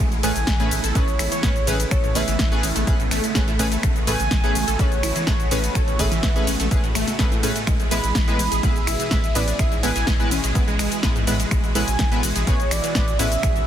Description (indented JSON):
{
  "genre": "progressive house",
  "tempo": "125 BPM",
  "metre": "4/4",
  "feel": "straight",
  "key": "A major",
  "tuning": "A4 = 439 Hz",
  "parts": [
    { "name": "filtered supersaw swell", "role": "sustained chords", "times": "0.0-13.7 s", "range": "B2 to G#4", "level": "-31 LUFS", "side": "equal", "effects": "phaser, sidechain pumping" },
    { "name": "wide unison pluck", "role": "arpeggios", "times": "0.0-13.6 s", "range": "G#2 to A4", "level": "-28 LUFS", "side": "equal", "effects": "phaser, cassette tape, sidechain pumping, tape echo" },
    { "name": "saturated sub bass", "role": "bass", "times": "0.0-13.6 s", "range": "A1 to A2", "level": "-27 LUFS", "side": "equal", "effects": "sidechain pumping" },
    { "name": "house drum kit", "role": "drums", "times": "0.0-13.7 s", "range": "finger snaps, hi-hat, ride cymbal, shaker, snare drum", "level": "-26 LUFS", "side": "left 1 dB", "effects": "soft clipping on snare" },
    { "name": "warm velvety synth lead", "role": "melody", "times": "0.2-13.7 s", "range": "B4 to B5", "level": "-28 LUFS", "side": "right 1 dB", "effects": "chorus, sidechain pumping, tape echo" },
    { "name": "chorused polysynth", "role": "stabs", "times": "0.2-13.3 s", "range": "A2 to B4", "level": "-27 LUFS", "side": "right 1 dB", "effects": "sidechain pumping, tape echo" },
    { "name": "electronic kick drum", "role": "drums", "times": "0.5-13.5 s", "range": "none", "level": "-22 LUFS", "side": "equal", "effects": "none" }
  ],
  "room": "digital ambience",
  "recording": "dense, heavily limited modern master",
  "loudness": "-18 LUFS",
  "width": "side -10 dB against mid",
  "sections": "0.0-13.7 A section",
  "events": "none",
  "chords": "0.0 Amaj9"
}